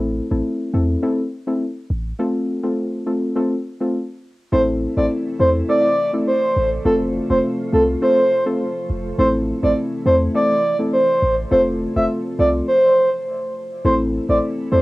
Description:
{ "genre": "dancehall", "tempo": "103 BPM", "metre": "4/4", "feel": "straight", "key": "A minor", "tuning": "A4 = 441 Hz", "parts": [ { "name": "deep mellow chord stab", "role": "accompaniment", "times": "0.0-14.8 s", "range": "A3 to A4", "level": "-20 LUFS", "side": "left 1 dB", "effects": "chorus, cassette tape" }, { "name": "warm 808-style bass", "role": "bass", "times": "0.0-14.8 s", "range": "F1 to E2", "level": "-22 LUFS", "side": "equal", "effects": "none" }, { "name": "breathy flute-like synth lead", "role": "melody", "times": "4.5-14.8 s", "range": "A4 to E5", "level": "-17 LUFS", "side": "equal", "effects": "chorus, cassette tape, analog delay" }, { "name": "glassy FM pad", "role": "sustained chords", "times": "4.5-14.8 s", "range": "C3 to A4", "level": "-33 LUFS", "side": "equal", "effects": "ensemble chorus, built-in reverb, cassette tape" } ], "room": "moderate booth ambience, RT60 0.3 s", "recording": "home recording on cassette", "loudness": "-16 LUFS", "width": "side -19 dB against mid", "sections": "0.0-4.5 A section; 4.5-13.8 B section", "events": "none", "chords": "0.0 Am; 2.2 F; 4.5 Am; 6.9 F; 9.2 Am; 11.5 F; 13.8 Am" }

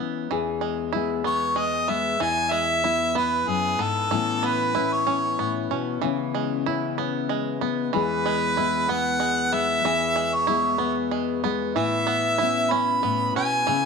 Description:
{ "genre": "acoustic folk duo or small band", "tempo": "94 BPM", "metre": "3/4", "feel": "straight", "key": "E major", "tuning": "A4 = 440 Hz", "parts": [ { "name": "fingerpicked steel-string acoustic guitar", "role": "accompaniment", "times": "0.0-13.9 s", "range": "E2 to G#4", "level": "-27 LUFS", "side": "left 10 dB", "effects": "none" }, { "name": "bluegrass banjo", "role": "arpeggios", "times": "0.0-13.9 s", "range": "E3 to E4", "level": "-28 LUFS", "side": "right 14 dB", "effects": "none" }, { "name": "warm harmonica", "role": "melody", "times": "1.3-13.9 s", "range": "G#4 to B5", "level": "-23 LUFS", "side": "right 1 dB", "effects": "slapback echo" } ], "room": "light reverb, studio reverb", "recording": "1960s-style stereo with parts hard left and right", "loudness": "-21 LUFS", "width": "side -5 dB against mid", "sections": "0.3-13.9 A section", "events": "harmonica solo 0.3-13.9", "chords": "0.3 E; 4.1 Aadd9; 6.0 C#m7; 7.9 E; 11.8 Aadd9" }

